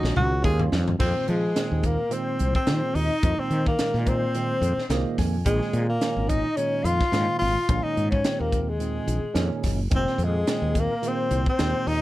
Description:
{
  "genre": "electric jazz fusion",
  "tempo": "108 BPM",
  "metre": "4/4",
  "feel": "swing 56% on 16ths",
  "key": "unclear",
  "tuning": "A4 = 440 Hz",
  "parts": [
    { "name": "breathy tenor saxophone", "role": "melody", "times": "0.0-12.0 s", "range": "Ab3 to Ab4", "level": "-27 LUFS", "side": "equal", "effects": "none" },
    { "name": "barky tine electric piano", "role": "accompaniment", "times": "0.0-12.0 s", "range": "Bb2 to Ab5", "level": "-30 LUFS", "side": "right 4 dB", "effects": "lush chorus" },
    { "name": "woody fretless electric bass", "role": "bass", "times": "0.0-12.0 s", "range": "F1 to F3", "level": "-25 LUFS", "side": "equal", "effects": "none" },
    { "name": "crisp fusion drum kit", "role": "drums", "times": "0.0-12.0 s", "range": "crash cymbal, hi-hat, kick drum, snare drum, toms", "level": "-27 LUFS", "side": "equal", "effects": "none" },
    { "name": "breathy mellow silver concert flute", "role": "second line", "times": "1.0-12.0 s", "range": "Ab4 to F5", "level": "-32 LUFS", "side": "left 6 dB", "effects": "none" }
  ],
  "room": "little or no reverb",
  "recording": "none",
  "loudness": "-22 LUFS",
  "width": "side -16 dB against mid",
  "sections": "0.0-1.0 A section; 1.0-12.0 B section",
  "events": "drum fill 0.0-1.0; tenor saxophone solo 0.0-1.0; tine electric piano fill 4.6-5.5",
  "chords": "0.0 Ebm11; 1.0 Fm7; 5.5 Bbm9; 9.9 Fm7"
}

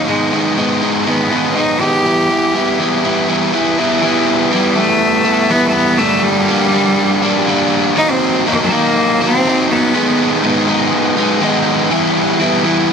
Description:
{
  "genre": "rock",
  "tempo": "122 BPM",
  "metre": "4/4",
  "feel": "straight",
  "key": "unclear",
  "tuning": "A4 = 440 Hz",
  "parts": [
    { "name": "bright cello", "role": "melody", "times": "0.0-10.4 s", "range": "G3 to G4", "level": "-16 LUFS", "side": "equal", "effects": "none" },
    { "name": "biting overdriven guitar", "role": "riff", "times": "0.0-12.9 s", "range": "G2 to E4", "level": "-13 LUFS", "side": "equal", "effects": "none" }
  ],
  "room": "moderate studio reverb, RT60 0.6 s",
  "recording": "dense, heavily limited modern master",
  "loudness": "-11 LUFS",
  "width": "side -6 dB against mid",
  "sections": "0.0-4.0 A section; 4.0-12.9 B section",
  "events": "cello solo 0.0-4.0",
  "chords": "0.1 Abm; 2.0 Em; 6.0 Gm; 8.0 Ebm; 9.9 Abm; 11.9 Em"
}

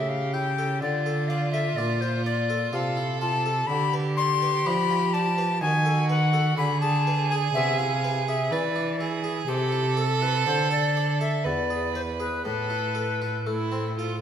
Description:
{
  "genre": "classical, baroque-style sonata movement with continuo",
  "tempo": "62 BPM",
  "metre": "3/4",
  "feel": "rubato",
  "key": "D minor, A minor from 3.7 s",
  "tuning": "A4 = 440 Hz",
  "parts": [
    { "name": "bright tenor recorder", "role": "melody", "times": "0.0-14.2 s", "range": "G4 to C6", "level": "-27 LUFS", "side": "left 5 dB", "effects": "none" },
    { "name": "rich violin", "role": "second line", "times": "0.0-14.2 s", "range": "E4 to B4", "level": "-30 LUFS", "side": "right 6 dB", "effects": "none" },
    { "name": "harpsichord", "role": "accompaniment", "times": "0.0-14.2 s", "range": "E2 to D5", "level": "-34 LUFS", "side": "left 1 dB", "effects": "none" },
    { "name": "rich cello", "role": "bass", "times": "0.0-14.2 s", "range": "E2 to F3", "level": "-27 LUFS", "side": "right 2 dB", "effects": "none" }
  ],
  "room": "wet recital hall reverb, RT60 1.5 s",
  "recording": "none",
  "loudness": "-22 LUFS",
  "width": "side -9 dB against mid",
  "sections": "0.0-14.2 A section",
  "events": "none",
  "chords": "0.0 A; 0.8 Dm; 3.7 Bdim/D; 5.6 B7/D#; 6.6 E7; 9.5 Am/C; 10.5 D5; 11.4 E7; 12.4 Am"
}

